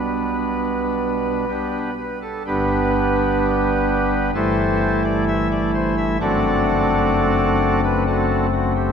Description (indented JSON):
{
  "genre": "classical, chorale-style piece for pipe organ",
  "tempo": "64 BPM",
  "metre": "4/4",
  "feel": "rubato",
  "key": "G major",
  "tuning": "A4 = 439 Hz",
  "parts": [
    { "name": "pipe organ, cornet", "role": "solo", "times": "0.0-8.9 s", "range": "F#1 to E5", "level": "-17 LUFS", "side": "equal", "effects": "none" }
  ],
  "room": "wet cathedral reverb, RT60 4.5 s",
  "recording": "minimal, uncompressed stereo recording",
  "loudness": "-17 LUFS",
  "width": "side -7 dB against mid",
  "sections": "0.0-2.5 A section; 2.5-8.9 B section",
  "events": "none",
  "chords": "0.0 G/B; 2.5 G; 4.3 A5/G; 6.2 D7/F#"
}